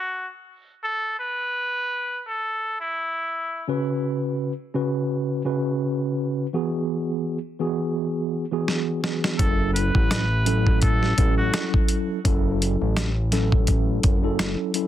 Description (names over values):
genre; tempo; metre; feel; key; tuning
hip hop, boom-bap hip-hop; 84 BPM; 4/4; swing 57% on 16ths; F# minor; A4 = 440 Hz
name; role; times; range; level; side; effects
trumpet with straight mute; melody; 0.0-3.6, 9.4-11.7 s; E4 to B4; -26 LUFS; equal; high-pass filter, low-pass filter, plate reverb, ping-pong delay
mellow tine electric piano; accompaniment; 3.7-14.9 s; C#3 to B4; -24 LUFS; equal; medium stereo tremolo, high-pass filter, low-pass filter, plate reverb
dusty soul sampler-style drum kit; drums; 8.7-14.9 s; hi-hat, kick drum, rim click, snare drum; -22 LUFS; equal; none
fat analog bass; bass; 9.4-14.6 s; F#1 to A1; -24 LUFS; equal; none
room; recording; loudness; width
light reverb; dense, heavily limited modern master; -21 LUFS; side -11 dB against mid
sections
0.0-9.4 A section; 9.4-14.9 B section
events
break 0.0-3.7; drum fill 8.7-9.4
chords
0.0 N.C.; 3.7 C#7sus4; 6.5 Eadd9; 9.4 F#m7